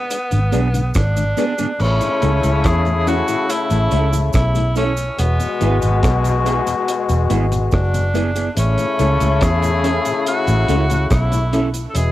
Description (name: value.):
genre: roots reggae.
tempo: 71 BPM.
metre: 4/4.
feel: straight.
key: unclear.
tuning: A4 = 440 Hz.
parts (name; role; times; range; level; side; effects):
bright tenor saxophone; melody; 0.0-12.1 s; B3 to A4; -22 LUFS; right 1 dB; cassette tape, tape echo.
cloth-damped thuddy drum kit; drums; 0.1-12.1 s; crash cymbal, hi-hat, kick drum, rim click; -22 LUFS; equal; cassette tape, analog delay.
cabasa; percussion; 0.1-12.1 s; none; -37 LUFS; right 8 dB; none.
mellow tonewheel organ; accompaniment; 0.3-11.6 s; E2 to E4; -26 LUFS; left 5 dB; chorus vibrato, slow rotary speaker, cassette tape, analog delay.
vintage muted fingered electric bass; bass; 0.3-12.1 s; E1 to E2; -17 LUFS; right 1 dB; transformer saturation.
electric guitar at the edge of break-up; accompaniment; 0.5-11.7 s; B3 to A4; -26 LUFS; right 7 dB; phaser, cassette tape, tape echo.
brilliant trombone section; second line; 1.8-12.1 s; B2 to F#4; -21 LUFS; left 5 dB; cassette tape, tape echo.
room: light reverb, small room ambience.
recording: home recording on cassette.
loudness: -15 LUFS.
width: side -14 dB against mid.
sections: 0.0-1.8 A section; 1.8-12.1 B section.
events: none.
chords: 0.0 G#dim; 1.8 A; 5.2 E; 8.6 A.